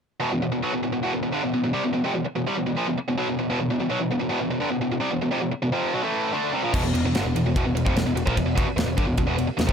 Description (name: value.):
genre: heavy metal.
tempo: 147 BPM.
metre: 4/4.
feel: straight.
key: E minor.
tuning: A4 = 440 Hz.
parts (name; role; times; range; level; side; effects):
tight distorted guitar; riff; 0.2-9.7 s; E2 to D4; -23 LUFS; equal; distortion.
overdriven picked electric bass; bass; 6.7-9.7 s; E1 to A#1; -26 LUFS; equal; none.
modern studio drum kit; drums; 6.7-9.7 s; crash cymbal, kick drum, ride cymbal, snare drum; -26 LUFS; equal; none.
room: small room ambience.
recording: none.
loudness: -22 LUFS.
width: side -7 dB against mid.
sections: 0.2-6.7 A section; 6.7-9.7 B section.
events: none.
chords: 0.2 E5; 6.7 Em.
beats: | 0.20 0.61 1.02 1.43 | 1.84 2.25 2.66 3.07 | 3.48 3.88 4.29 4.70 | 5.11 5.52 5.93 6.33 | 6.74 7.15 7.56 7.96 | 8.37 8.78 9.18 9.59.